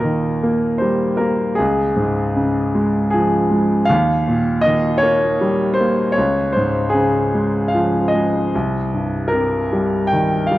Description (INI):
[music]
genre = classical, lyrical solo piano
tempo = 77 BPM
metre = 3/4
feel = rubato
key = Db lydian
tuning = A4 = 440 Hz
[part]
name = clear grand piano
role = solo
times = 0.0-10.6 s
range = C2 to G5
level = -15 LUFS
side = equal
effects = none
[sound]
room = moderate concert hall reverb, RT60 1.9 s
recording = dark, warm production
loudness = -15 LUFS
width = side -16 dB against mid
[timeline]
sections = 0.0-10.6 A section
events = none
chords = 0.0 Eb; 1.6 Db; 3.9 Ebadd9; 6.2 Db; 8.5 Cm7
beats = 0.02 0.81 | 1.58 2.36 3.13 | 3.89 4.64 5.41 | 6.17 6.94 7.74 | 8.53 9.33 10.12